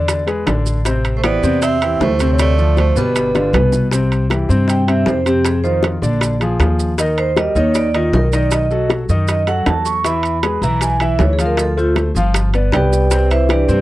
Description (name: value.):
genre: Afro-Cuban jazz.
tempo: 157 BPM.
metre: 4/4.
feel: straight.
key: C major.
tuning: A4 = 440 Hz.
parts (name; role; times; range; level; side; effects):
clear concert grand piano; accompaniment; 0.0-13.8 s; B2 to F5; -20 LUFS; left 2 dB; none.
upright bass; bass; 0.0-13.8 s; G1 to G2; -17 LUFS; equal; none.
bongos; percussion; 0.1-13.8 s; none; -24 LUFS; left 4 dB; none.
maracas; percussion; 0.1-13.8 s; none; -30 LUFS; right 8 dB; none.
timbales; percussion; 0.1-13.7 s; none; -22 LUFS; right 4 dB; none.
vibraphone with medium hard mallets; melody; 1.2-13.8 s; D4 to Db6; -18 LUFS; right 3 dB; none.
breathy tenor saxophone; second line; 1.2-3.7 s; G3 to C4; -24 LUFS; right 4 dB; none.
room: little or no reverb.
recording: dry, close 1970s-style studio recording.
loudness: -13 LUFS.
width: side -16 dB against mid.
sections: 0.0-3.9 A section; 3.9-13.8 B section.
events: drum fill 3.3-3.9; vibraphone solo 3.9-13.8.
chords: 0.1 E7; 0.9 Am9; 2.4 Dm7; 3.2 G7; 3.9 C; 5.5 F5; 6.2 Bb7; 7.0 Eb; 8.5 B7; 10.0 E; 11.6 Dm7; 12.3 G7; 13.1 Cmaj9.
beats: 0.09 0.47 | 0.86 1.24 1.62 2.01 | 2.39 2.77 3.15 3.54 | 3.92 4.30 4.69 5.07 | 5.45 5.84 6.22 6.60 | 6.99 7.37 7.75 8.13 | 8.52 8.90 9.28 9.66 | 10.05 10.43 10.81 11.20 | 11.58 11.96 12.35 12.73 | 13.11 13.50.